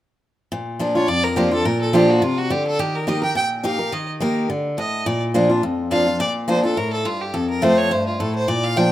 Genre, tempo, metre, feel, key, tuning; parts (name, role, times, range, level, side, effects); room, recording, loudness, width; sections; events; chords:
bluegrass; 211 BPM; 4/4; swing 54% on 8ths; Bb major; A4 = 439 Hz
picked steel-string acoustic guitar; accompaniment; 0.5-8.9 s; F2 to Bb4; -19 LUFS; equal
clear fiddle; melody; 1.0-8.9 s; F4 to G5; -23 LUFS; right 1 dB
light reverb, studio ambience; rough home demo mix; -17 LUFS; side -13 dB against mid
0.5-8.9 A section
0.5 Bb; 2.8 Eb; 5.1 Bb; 7.3 F